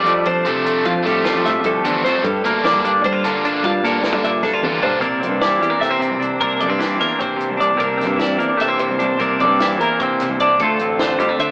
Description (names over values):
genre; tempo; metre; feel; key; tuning
math rock and midwest emo; 301 BPM (eighths); 7/8; straight; unclear; A4 = 440 Hz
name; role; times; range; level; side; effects
twelve-string electric guitar; accompaniment; 0.0-11.5 s; D2 to F4; -18 LUFS; equal; none
twelve-string electric guitar; arpeggios; 0.0-11.5 s; F4 to E5; -19 LUFS; equal; none
biting overdriven guitar; riff; 0.0-5.0 s; C3 to D4; -23 LUFS; equal; none
fuzz fingered electric bass; bass; 0.0-11.5 s; A1 to G3; -24 LUFS; equal; overdrive
compact cocktail drum kit; drums; 0.1-11.5 s; hi-hat, kick drum, snare drum, toms; -27 LUFS; equal; none
room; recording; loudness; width
moderate stone room reverb, RT60 1.0 s; rough rehearsal-room recording, AM radio sound; -15 LUFS; side -36 dB against mid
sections
0.0-5.0 A section; 5.0-11.5 B section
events
drum fill 4.4-5.0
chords
0.0 F69; 2.2 Gm9; 5.0 C9; 10.6 Dm9